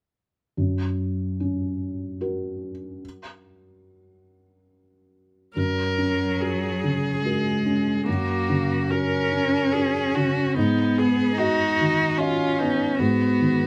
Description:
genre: neoclassical piano and strings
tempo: 73 BPM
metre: 3/4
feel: rubato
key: F# major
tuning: A4 = 444 Hz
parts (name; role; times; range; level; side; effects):
- felt-muted upright piano; accompaniment; 0.6-13.7 s; F#2 to D#5; -27 LUFS; equal; none
- rich cello; second line; 5.6-13.7 s; F#3 to D#4; -26 LUFS; equal; none
- clear viola; accompaniment; 5.6-13.7 s; D#4 to A#4; -29 LUFS; equal; none
room: light reverb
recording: close, detailed microphones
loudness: -23 LUFS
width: mono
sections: 0.6-5.6 A section; 5.6-13.7 B section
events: none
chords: 0.6 F#; 10.6 G#m7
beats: | 0.57 1.40 2.22 | 3.04 3.85 4.70 | 5.57 6.41 7.24 | 8.07 8.90 9.73 | 10.56 11.37 12.19 | 13.00

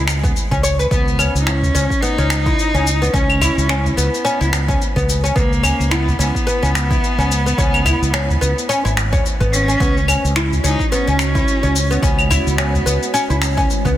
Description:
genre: organic downtempo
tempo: 108 BPM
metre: 4/4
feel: swing 57% on 16ths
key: C# minor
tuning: A4 = 440 Hz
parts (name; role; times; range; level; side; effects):
- warm cello; melody; 0.0-13.7 s; G#3 to D#4; -22 LUFS; equal; digital delay
- oud; arpeggios; 0.0-14.0 s; B3 to C#5; -21 LUFS; left 1 dB; tape echo
- mellow fretless electric bass; bass; 0.0-14.0 s; G#1 to C#2; -18 LUFS; equal; lush chorus
- electronic finger snaps, shaker and claves; drums; 0.1-14.0 s; none; -22 LUFS; left 2 dB; overdrive, soft clipping on snare
- electronic kick drum; drums; 0.2-13.9 s; none; -20 LUFS; equal; none
- udu; percussion; 0.2-13.7 s; none; -23 LUFS; right 1 dB; none
- warbly tape-like pad; sustained chords; 10.6-14.0 s; G#3 to C#5; -26 LUFS; equal; chorus, built-in reverb, sidechain pumping
room: light reverb, small room ambience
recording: dense, heavily limited modern master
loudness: -14 LUFS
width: side -12 dB against mid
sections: 0.0-14.0 A section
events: none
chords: 0.0 C#m7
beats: 0.36 | 0.91 1.47 2.02 2.58 | 3.14 3.69 4.25 4.80 | 5.36 5.91 6.47 7.02 | 7.58 8.14 8.69 9.25 | 9.80 10.36 10.91 11.47 | 12.02 12.58 13.14 13.69

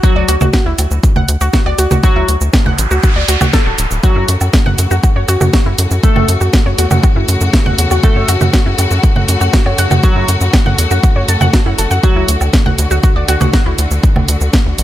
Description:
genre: melodic techno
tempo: 120 BPM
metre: 4/4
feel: straight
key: F# minor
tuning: A4 = 444 Hz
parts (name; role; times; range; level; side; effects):
- resonant sweep polysynth; melody; 0.0-12.2 s; F#3 to A4; -22 LUFS; equal; chorus, sidechain pumping, tape echo
- wide unison pluck; arpeggios; 0.0-13.7 s; E4 to A5; -20 LUFS; equal; sidechain pumping, dub echo
- electronic kick drum; drums; 0.0-14.6 s; none; -11 LUFS; equal; none
- house drum kit; drums; 0.0-14.8 s; congas, hi-hat, shaker, snare drum, woodblock; -16 LUFS; right 2 dB; none
- tight sequencer bass; bass; 0.2-14.8 s; D1 to F#2; -14 LUFS; equal; sidechain pumping
- noise sweep; sound effects; 2.5-4.0 s; none; -21 LUFS; right 2 dB; none
- warm studio string section; sustained chords; 4.0-14.8 s; C#3 to F#4; -20 LUFS; left 2 dB; sidechain pumping
room: little or no reverb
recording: none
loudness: -10 LUFS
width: side -13 dB against mid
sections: 0.0-14.8 A section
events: noise sweep 2.5-4.0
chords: 0.0 D; 4.0 F#m; 12.0 D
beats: | 0.04 0.54 1.03 1.53 | 2.04 2.54 3.04 3.54 | 4.04 4.54 5.04 5.54 | 6.04 6.54 7.04 7.54 | 8.04 8.54 9.04 9.54 | 10.04 10.54 11.04 11.54 | 12.04 12.54 13.04 13.54 | 14.04 14.54

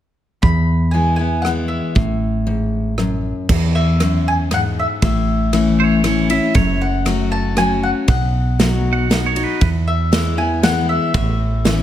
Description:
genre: honky-tonk and classic country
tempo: 118 BPM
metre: 3/4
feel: straight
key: E major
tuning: A4 = 440 Hz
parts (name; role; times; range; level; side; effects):
- mandolin; melody; 0.4-11.8 s; E5 to B5; -23 LUFS; left 1 dB; none
- picked steel-string acoustic guitar; accompaniment; 0.4-11.8 s; E2 to F#4; -19 LUFS; left 4 dB; none
- woody fretless electric bass; bass; 0.4-11.8 s; F#1 to E2; -19 LUFS; right 1 dB; none
- natural country drum kit; drums; 0.4-11.8 s; crash cymbal, kick drum, ride cymbal, rim click, snare drum; -20 LUFS; right 1 dB; none
- twangy electric guitar; second line; 5.8-9.7 s; B4 to F#5; -22 LUFS; right 6 dB; tape echo
room: light reverb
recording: none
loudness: -15 LUFS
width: side -11 dB against mid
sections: 0.4-3.5 A section; 3.5-11.8 B section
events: none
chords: 0.4 E; 2.0 F#madd9/A; 3.5 E; 5.0 A; 6.6 F#m; 8.1 B; 9.6 E; 11.1 Aadd9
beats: | 0.43 0.94 1.45 | 1.96 2.47 2.98 | 3.49 4.00 4.51 | 5.02 5.53 6.04 | 6.55 7.06 7.57 | 8.08 8.59 9.10 | 9.61 10.12 10.63 | 11.14 11.65

